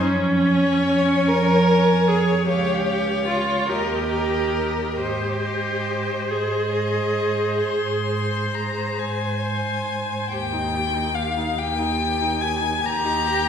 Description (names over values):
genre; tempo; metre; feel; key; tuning
classical, slow romantic movement for string quartet; 44-51 BPM (dotted quarters); 12/8; rubato; Ab major, Eb major from 10.3 s; A4 = 443 Hz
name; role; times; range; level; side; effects
rich viola; accompaniment; 0.0-13.5 s; Db4 to Bb4; -23 LUFS; equal; none
rich cello; bass; 0.0-13.5 s; Db2 to Ab2; -25 LUFS; right 3 dB; none
rich violin; melody; 0.4-13.5 s; Eb5 to C6; -27 LUFS; left 4 dB; none
rich violin; second line; 0.4-13.5 s; G4 to Db5; -27 LUFS; left 3 dB; none
room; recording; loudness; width
wet recital hall reverb, RT60 1.5 s; recorded in a church or concert hall; -19 LUFS; side -8 dB against mid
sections
0.0-10.3 A section; 10.3-13.5 B section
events
none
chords
0.0 Db/F; 2.5 Db; 3.7 Eb; 5.0 Ab; 10.3 Eb